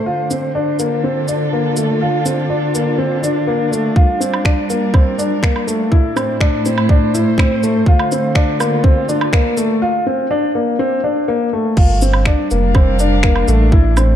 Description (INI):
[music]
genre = piano and strings electronica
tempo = 123 BPM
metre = 4/4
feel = straight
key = D minor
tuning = A4 = 445 Hz
[part]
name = dark string quartet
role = sustained chords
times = 0.0-14.2 s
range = A2 to F5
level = -20 LUFS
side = right 1 dB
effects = stereo widening, sidechain pumping
[part]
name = dark upright piano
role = riff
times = 0.1-14.2 s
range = A3 to F4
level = -17 LUFS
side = left 1 dB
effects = digital delay
[part]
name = organic electronic drum kit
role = drums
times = 0.3-14.1 s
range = crash cymbal, finger snaps, shaker, woodblock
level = -24 LUFS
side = right 2 dB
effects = none
[part]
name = electronic kick drum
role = drums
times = 4.0-13.8 s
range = none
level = -12 LUFS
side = equal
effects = none
[part]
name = warm sub bass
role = bass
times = 11.8-14.2 s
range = F1 to A1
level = -14 LUFS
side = equal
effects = sidechain pumping
[sound]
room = moderate lush hall reverb, RT60 1.9 s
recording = dark, warm production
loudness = -13 LUFS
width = side -10 dB against mid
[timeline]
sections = 0.0-11.8 A section; 11.8-14.2 B section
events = build-up 0.0-11.8; break 9.8-11.8; drop 11.8-14.2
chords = 0.1 Dm; 4.0 Gm7; 5.9 Am; 7.9 Dm; 11.8 Gm7